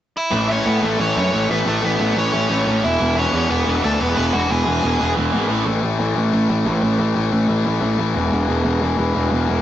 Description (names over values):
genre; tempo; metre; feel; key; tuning
punk; 180 BPM; 4/4; straight; A major; A4 = 440 Hz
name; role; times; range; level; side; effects
nasal lead guitar with a parked wah; melody; 0.2-5.1 s; A3 to G#5; -21 LUFS; equal; overdrive
biting overdriven guitar; riff; 0.3-5.6 s; A2 to E4; -24 LUFS; right 7 dB; none
distorted electric guitar; riff; 0.3-9.6 s; E2 to A3; -22 LUFS; left 4 dB; overdrive
fuzz picked electric bass; bass; 0.3-9.6 s; E1 to A2; -19 LUFS; right 1 dB; overdrive
room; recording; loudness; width
light reverb; rough rehearsal-room recording, tube saturation, nothing above 7.9 kHz; -16 LUFS; side -11 dB against mid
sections
0.3-5.7 A section; 5.7-9.6 B section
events
none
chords
0.3 A; 2.8 E; 5.5 A; 5.7 A5; 8.2 E5